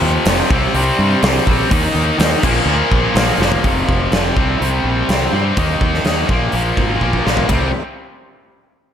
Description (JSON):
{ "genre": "hard rock", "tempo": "125 BPM", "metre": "4/4", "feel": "straight", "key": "C minor", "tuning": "A4 = 440 Hz", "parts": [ { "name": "tight distorted guitar", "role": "riff", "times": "0.0-7.7 s", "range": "F2 to Eb4", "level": "-17 LUFS", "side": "left 1 dB", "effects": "distortion, slapback echo" }, { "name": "growling fingered electric bass", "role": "bass", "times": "0.0-7.7 s", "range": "F1 to G2", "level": "-20 LUFS", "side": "equal", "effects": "overdrive" }, { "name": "gated 80s drum kit", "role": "drums", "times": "0.3-7.6 s", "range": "crash cymbal, hi-hat, kick drum, ride cymbal, snare drum, toms", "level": "-17 LUFS", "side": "equal", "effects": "none" } ], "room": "light reverb, small room reverb", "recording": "none", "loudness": "-13 LUFS", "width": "side -9 dB against mid", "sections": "0.0-3.6 A section; 3.6-7.5 B section; 7.5-8.9 C section", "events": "drum fill 3.4, 7.0-7.5", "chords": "0.0 F5; 0.5 C5; 1.7 Eb5; 2.4 Bb; 3.6 F5; 4.4 C5; 5.6 Eb5; 6.3 Bb5; 7.5 C5" }